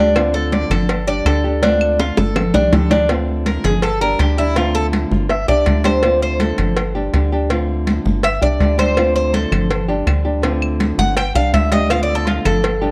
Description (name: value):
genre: latin, Cuban son and guajira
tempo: 164 BPM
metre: 4/4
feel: straight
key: D minor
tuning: A4 = 441 Hz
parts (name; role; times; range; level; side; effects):
- nylon-string guitar; accompaniment; 0.0-12.9 s; D3 to G4; -24 LUFS; equal; none
- Cuban tres; arpeggios; 0.0-12.9 s; D4 to G5; -21 LUFS; equal; analog delay
- tight sequencer bass; bass; 0.0-12.9 s; G1 to D2; -22 LUFS; equal; none
- claves; percussion; 0.2-2.5, 9.0-12.6 s; none; -30 LUFS; equal; none
- congas; percussion; 0.2-12.9 s; none; -25 LUFS; equal; none
- cowbell and bongos; percussion; 0.2-12.8 s; none; -25 LUFS; equal; none
room: moderate spring reverb, RT60 1.9 s, studio reverb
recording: cassette tape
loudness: -17 LUFS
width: mono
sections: 0.0-3.1 A section; 3.1-12.9 B section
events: drum fill 1.6-3.1; Cuban tres solo 3.1-12.9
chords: 0.2 Dm7; 0.9 Gsus2; 1.6 Dm7; 2.4 Gsus2; 3.1 Dm7; 3.8 G5; 4.6 Dm7; 5.3 G5; 6.0 Dm7; 6.8 G5; 7.5 Dm7; 8.2 G5; 9.0 Dm7; 9.7 G5; 10.4 Dm7; 11.2 G5; 11.9 Dm7